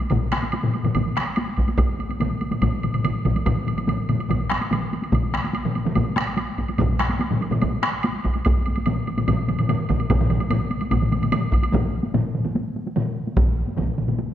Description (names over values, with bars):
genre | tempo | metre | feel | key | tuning
japanese traditional, taiko drum ensemble | 145 BPM | 4/4 | straight | none | none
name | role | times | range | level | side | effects
taiko ensemble | percussion | 0.0-14.3 s | none | -27 LUFS | equal | none
woodblock | percussion | 0.0-11.7 s | none | -32 LUFS | right 3 dB | none
taiko ensemble | percussion | 0.1-14.2 s | none | -25 LUFS | left 4 dB | none
taiko ensemble | percussion | 0.1-14.2 s | none | -27 LUFS | right 4 dB | none
taiko ensemble | percussion | 0.1-13.9 s | none | -25 LUFS | equal | none
room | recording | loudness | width
wet scoring stage reverb, RT60 1.7 s | dark, warm production | -20 LUFS | side -11 dB against mid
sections
0.0-11.7 A section; 11.7-14.3 B section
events
speeding up 0.0-14.3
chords
none